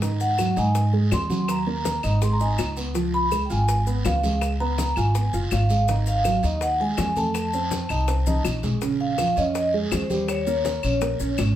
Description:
Afro-Cuban jazz; 164 BPM; 4/4; straight; Ab mixolydian; A4 = 441 Hz
dark concert grand piano; accompaniment; 0.0-11.5 s; Db3 to F5; -27 LUFS; right 3 dB
upright bass; bass; 0.0-11.6 s; Gb1 to Ab2; -24 LUFS; equal
bongos; percussion; 0.0-11.6 s; -33 LUFS; left 5 dB
congas; percussion; 0.0-11.6 s; -32 LUFS; left 2 dB
guiro; percussion; 0.0-11.6 s; -38 LUFS; right 2 dB
maracas; percussion; 0.0-11.6 s; -39 LUFS; left 6 dB
vibraphone with medium mallets; melody; 0.2-11.3 s; C5 to C6; -25 LUFS; equal
claves; percussion; 0.4-11.6 s; -36 LUFS; left 4 dB
moderate studio reverb, RT60 0.5 s; heard from further back in the room; -20 LUFS; side -12 dB against mid
0.0-11.6 A section
drum fill 8.3-8.8
0.0 Ab7; 1.5 Ebm; 2.2 Ab5; 3.0 Db7; 5.9 Ab5; 7.3 F7; 8.8 Bbm7; 10.3 Eb7
| 0.02 0.39 0.75 1.12 | 1.49 1.85 2.22 2.58 | 2.95 3.32 3.68 4.05 | 4.42 4.78 5.15 5.52 | 5.88 6.25 6.62 6.98 | 7.35 7.71 8.08 8.45 | 8.81 9.18 9.55 9.91 | 10.28 10.65 11.02 11.38

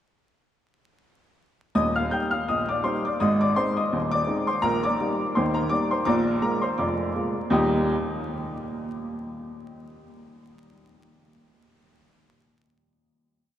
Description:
ragtime piano; 83 BPM; 2/4; swing 56% on 16ths; Eb major; A4 = 440 Hz
clear upright piano; solo; 1.8-7.9 s; Eb1 to G6; -22 LUFS; equal
wet cathedral reverb, RT60 5.3 s; in a vast, echoing space, vinyl crackle; -22 LUFS; side -11 dB against mid
1.8-7.5 A section; 7.5-9.0 final chord
1.8 Eb; 3.2 Ab; 4.6 Eb/Bb; 6.1 Bb7; 7.5 Eb
| 1.75 2.48 | 3.20 3.92 | 4.64 5.36 | 6.08 6.81 | 7.54

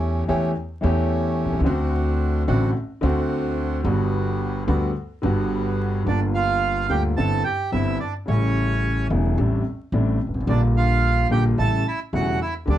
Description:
tango; 109 BPM; 4/4; rubato; G major, G minor from 6.1 s; A4 = 440 Hz
warm grand piano; accompaniment; 0.0-12.8 s; E1 to G4; -23 LUFS; left 1 dB
bandoneon; stabs; 0.0-6.0 s; G3 to G4; -30 LUFS; right 3 dB
upright bass; bass; 0.0-12.8 s; E1 to E2; -23 LUFS; equal
bandoneon; melody; 6.1-12.8 s; C#4 to A5; -24 LUFS; right 5 dB
light reverb; vinyl crackle; -20 LUFS; side -12 dB against mid
0.0-6.1 A section; 6.1-12.8 B section
0.0 A7/E; 1.7 D7; 3.9 Gmaj7; 6.1 Gm7; 7.2 Cadd9/G; 8.3 A7; 9.4 D7sus4/A; 10.5 Gm7/Bb; 11.6 A7
0.01 0.56 1.11 | 1.66 2.21 2.75 3.31 | 3.85 4.41 4.96 5.52 | 6.07 6.63 7.18 7.73 | 8.28 8.83 9.38 9.93 | 10.48 11.03 11.58 12.13 | 12.68

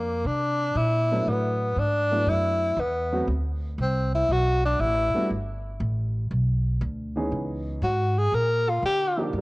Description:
jazz, small-group swing and bop; 119 BPM; 4/4; swing 69% on 8ths; A4 = 440 Hz
breathy tenor saxophone; melody; 0.0-9.2 s; Bb3 to A#4; -24 LUFS; left 1 dB
upright bass; bass; 0.0-9.4 s; G1 to D3; -26 LUFS; equal
dark baby grand piano; accompaniment; 1.1-9.4 s; E3 to A#4; -29 LUFS; right 1 dB; cassette tape
moderate spring reverb, RT60 2.0 s; home recording on cassette; -22 LUFS; side -22 dB against mid
0.0-9.3 A section
0.3 C9; 1.3 D69; 3.3 D7sus2; 5.3 Gadd9; 7.3 C#m7; 8.3 A#6
0.26 0.76 | 1.26 1.77 2.27 2.78 | 3.28 3.79 4.29 4.80 | 5.30 5.81 6.31 6.81 | 7.32 7.82 8.33 8.83 | 9.34

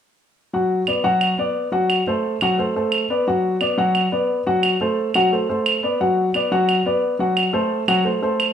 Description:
Afro-Cuban jazz; 176 BPM; 4/4; straight; A4 = 440 Hz
warm upright piano; accompaniment; 0.5-8.5 s; F#3 to F#5; -18 LUFS; left 1 dB
claves; percussion; 0.9-8.5 s; -22 LUFS; right 4 dB
moderate large studio reverb, RT60 1.0 s; minimal, uncompressed stereo recording; -17 LUFS; side -8 dB against mid
0.5-8.5 A section
0.5 Bm/F#; 1.9 D7 (rootless); 3.3 Bm/F#; 4.6 D7 (rootless); 6.0 Bm/F#; 7.4 D7 (rootless)
| 0.53 0.87 1.21 1.55 | 1.90 2.24 2.58 2.92 | 3.27 3.61 3.95 4.29 | 4.63 4.97 5.32 5.66 | 6.00 6.34 6.68 7.03 | 7.37 7.71 8.05 8.39

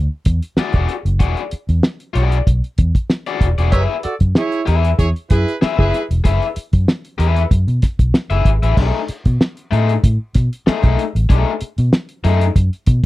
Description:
funk; 95 BPM; 4/4; straight; A4 = 440 Hz
vintage muted fingered electric bass; bass; 0.0-13.0 s; E1 to B2; -16 LUFS; equal
cloth-damped thuddy drum kit; drums; 0.3-13.1 s; crash cymbal, hi-hat, kick drum, snare drum; -15 LUFS; equal
raw garage guitar; accompaniment; 0.6-12.4 s; A3 to E5; -21 LUFS; left 7 dB; overdrive
clear horn section; second line; 3.7-6.0 s; E4 to E5; -20 LUFS; right 3 dB
little or no reverb; dry, close 1970s-style studio recording; -14 LUFS; side -17 dB against mid
0.0-8.8 A section; 8.8-13.1 B section
0.0 E9; 3.7 F#9sus4; 8.8 B6
0.57 | 1.20 1.83 2.46 3.10 | 3.73 4.36 4.99 5.62 | 6.25 6.88 7.51 8.14 | 8.77 9.40 10.03 10.66 | 11.29 11.92 12.55

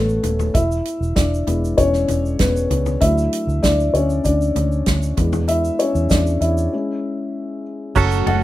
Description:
piano-driven pop; 97 BPM; 4/4; straight; A4 = 440 Hz
felt-muted upright piano; accompaniment; 0.0-8.4 s; F#3 to F#5; -20 LUFS; left 2 dB
vintage muted fingered electric bass; bass; 0.0-8.4 s; D#1 to E2; -20 LUFS; equal
egg shaker; percussion; 0.1-8.3 s; -39 LUFS; right 6 dB
natural country drum kit; drums; 0.2-8.4 s; crash cymbal, hi-hat, kick drum, ride cymbal, snare drum, toms; -21 LUFS; right 1 dB
chorused pulse-width pad; sustained chords; 8.0-8.4 s; F#3 to F#4; -24 LUFS; right 2 dB
direct-recorded clean electric guitar; riff; 8.0-8.4 s; F#3 to A4; -19 LUFS; right 8 dB
light reverb; rough home demo mix; -16 LUFS; side -15 dB against mid
0.0-8.0 A section
felt piano solo 0.0-8.0; break 6.7-8.0
0.0 A; 0.5 E; 3.0 D; 5.2 E; 6.7 C#m
| 0.54 1.16 1.78 2.40 | 3.02 3.64 4.25 4.87 | 5.49 6.11 6.73 7.35 | 7.96

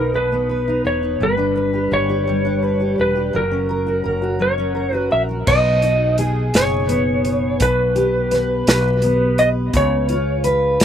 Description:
six-eight pop ballad; 56 BPM (dotted quarters); 6/8; straight; B major; A4 = 440 Hz
electric slide guitar; melody; 0.0-10.4 s; A#4 to E5; -19 LUFS; equal
fingerpicked steel-string acoustic guitar; accompaniment; 0.0-10.8 s; B2 to B4; -20 LUFS; equal; double-tracked left and right, slapback echo
mellow fretless electric bass; bass; 0.0-10.8 s; E1 to C#2; -23 LUFS; equal
natural country drum kit; drums; 5.5-10.8 s; crash cymbal, hi-hat, kick drum, snare drum; -20 LUFS; equal
little or no reverb; recorded outdoors, with no room sound; -16 LUFS; side -9 dB against mid
0.0-5.5 A section; 5.5-10.8 B section
0.0 B; 1.2 G; 3.3 F#; 5.5 B6; 7.6 B(#5, no3); 9.7 C#7
0.14 | 1.21 2.27 | 3.34 4.41 | 5.47 6.54 | 7.61 8.67 | 9.74 10.81

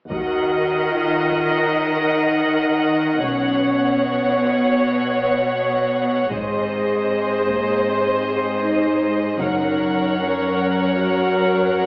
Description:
cinematic, epic orchestral film score; 78 BPM; 4/4; straight; Eb minor; A4 = 440 Hz
warm symphonic violin section; melody; 0.1-11.9 s; Eb5 to Gb5; -26 LUFS; equal
rich studio violin section; second line; 0.1-11.9 s; C5 to Eb5; -22 LUFS; equal
rich symphonic viola section; accompaniment; 0.1-11.9 s; Ab4 to C#5; -24 LUFS; equal
dark French horn section; sustained chords; 0.1-11.9 s; Bb3 to Gb4; -22 LUFS; equal
bright symphonic double bass section; bass; 0.1-10.1 s; Gb1 to Eb2; -33 LUFS; equal
clear symphonic cello section; bass; 0.1-11.9 s; Gb2 to Eb3; -24 LUFS; equal
taiko ensemble; drums; 0.1-1.6, 6.3-7.8 s; -40 LUFS; equal
wet scoring stage reverb, RT60 1.6 s; heard from further back in the room, AM radio sound; -17 LUFS; side -25 dB against mid
0.1-11.9 A section
0.1 Ebm; 3.2 Bsus2; 6.3 Ab; 9.4 Gb
| 0.12 0.90 1.68 2.45 | 3.23 4.00 4.77 5.55 | 6.32 7.09 7.86 8.63 | 9.40 10.18 10.96 11.74

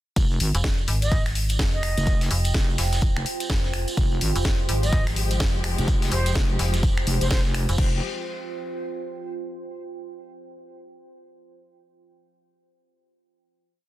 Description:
bass house; 126 BPM; 4/4; swing 61% on 16ths; F minor; A4 = 439 Hz
wobble bass; bass; 0.2-8.0 s; F1 to Ab1; -25 LUFS; equal; chorus, tube saturation, sidechain pumping
dusty soul sampler-style drum kit; drums; 0.2-7.7 s; hi-hat, snare drum; -38 LUFS; left 1 dB
electronic kick drum; drums; 0.2-7.9 s; -22 LUFS; equal
house drum kit; drums; 0.2-7.9 s; crash cymbal, finger snaps, hi-hat, snare drum; -30 LUFS; left 1 dB
tambourine; percussion; 0.2-7.8 s; -36 LUFS; right 4 dB
deep dark ambient pad; texture; 1.9-9.6 s; F4 to G5; -34 LUFS; right 3 dB; chorus, built-in reverb, sidechain pumping
metallic FM bass; bass; 0.5-7.8 s; F1 to Ab1; -24 LUFS; equal; overdrive, sidechain pumping
breathy jazz flute; melody; 1.0-7.4 s; C5 to Eb5; -33 LUFS; equal; digital delay
dark studio string section; sustained chords; 4.0-8.0 s; F3 to G4; -34 LUFS; left 3 dB; sidechain pumping
little or no reverb; dense, heavily limited modern master; -21 LUFS; side -15 dB against mid
0.2-7.8 drop; 7.8-9.7 final chord
drop 0.2-7.8
0.2 Fmadd9; 7.8 Fsus2
| 0.16 0.64 1.12 1.59 | 2.07 2.54 3.02 3.50 | 3.97 4.45 4.93 5.40 | 5.88 6.35 6.83 7.31 | 7.78 8.26 8.73 9.21

